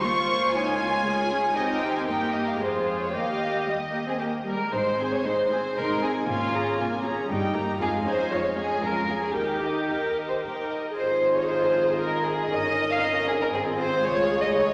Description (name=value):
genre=quick classical-period movement for string orchestra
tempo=117 BPM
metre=3/4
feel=straight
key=Ab major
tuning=A4 = 439 Hz
part: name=warm chamber violin section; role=melody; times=0.0-14.7 s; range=C5 to Db6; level=-34 LUFS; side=equal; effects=none
part: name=warm chamber violin section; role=second line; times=0.0-14.7 s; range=F4 to F5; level=-28 LUFS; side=equal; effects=none
part: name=warm chamber viola section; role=accompaniment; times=0.0-14.7 s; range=G3 to C5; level=-31 LUFS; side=equal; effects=none
part: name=warm chamber cello section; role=bass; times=0.0-14.7 s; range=Db2 to F4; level=-37 LUFS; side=equal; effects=none
part: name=clear chamber double bass section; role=bass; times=4.7-14.7 s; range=G1 to F2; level=-39 LUFS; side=equal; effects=none
room=wet scoring stage reverb, RT60 1.6 s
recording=none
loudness=-25 LUFS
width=mono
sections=0.0-4.7 A section; 4.7-14.7 B section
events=none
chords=0.0 Bbm7/Db; 1.6 Eb; 2.6 Fm; 3.1 Eb; 4.7 Ab; 6.3 Bbm7/Ab; 7.3 Eb/G; 7.8 Db/F; 9.4 Eb; 11.0 Ab; 12.5 Eb7/G; 13.5 Ab; 14.0 Db